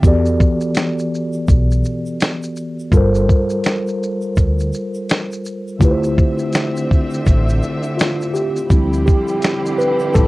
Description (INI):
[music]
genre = lo-fi hip hop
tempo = 83 BPM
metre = 4/4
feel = swing 61% on 16ths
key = D dorian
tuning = A4 = 440 Hz
[part]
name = mellow tine electric piano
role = accompaniment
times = 0.0-10.3 s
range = D3 to D5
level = -19 LUFS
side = equal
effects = medium stereo tremolo, low-pass filter, plate reverb
[part]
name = upright bass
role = bass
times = 0.0-10.3 s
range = G1 to E2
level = -18 LUFS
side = equal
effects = none
[part]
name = dusty soul sampler-style drum kit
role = drums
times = 0.0-10.3 s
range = finger snaps, hi-hat, kick drum, shaker, snare drum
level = -15 LUFS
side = equal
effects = none
[part]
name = egg shaker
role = percussion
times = 0.0-10.3 s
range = none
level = -46 LUFS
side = right 2 dB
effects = none
[part]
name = warm studio string section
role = sustained chords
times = 5.8-10.3 s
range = D3 to E5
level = -25 LUFS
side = equal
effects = low-pass filter
[sound]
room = light reverb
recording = worn, warbling old tape, cassette tape, warbly pitch drift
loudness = -14 LUFS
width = side -20 dB against mid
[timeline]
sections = 0.0-8.7 A section; 8.7-10.3 B section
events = break 0.0-5.8; tine electric piano solo 8.7-10.3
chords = 0.0 Em11; 2.9 Gm11; 5.8 Dm11